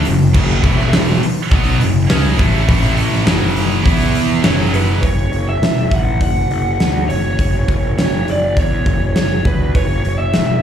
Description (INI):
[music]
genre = hard rock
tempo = 102 BPM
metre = 4/4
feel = straight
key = F# minor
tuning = A4 = 440 Hz
[part]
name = overdriven electric guitar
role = riff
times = 0.0-5.0 s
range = E2 to E4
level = -21 LUFS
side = left 12 dB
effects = none
[part]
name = scooped high-gain guitar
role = riff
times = 0.0-5.0 s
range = E2 to E4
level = -19 LUFS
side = right 10 dB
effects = distortion
[part]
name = fuzz picked electric bass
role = bass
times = 0.0-10.6 s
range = E1 to E2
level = -17 LUFS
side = equal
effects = overdrive
[part]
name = huge arena drum kit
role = drums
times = 0.1-10.5 s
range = crash cymbal, hi-hat, kick drum, snare drum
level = -17 LUFS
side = left 1 dB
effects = none
[part]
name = lead guitar through a small cranked amp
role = melody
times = 4.5-10.6 s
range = B4 to F#5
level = -20 LUFS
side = right 1 dB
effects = overdrive, slapback echo, digital delay
[sound]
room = little or no reverb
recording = live gig heard through the venue's PA, club reverb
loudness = -13 LUFS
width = side -9 dB against mid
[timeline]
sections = 0.0-5.0 A section; 5.0-10.6 B section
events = none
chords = 0.0 F#5; 0.6 E5; 1.2 F#m; 2.7 A5; 3.3 F#5; 3.9 E5; 4.5 F#5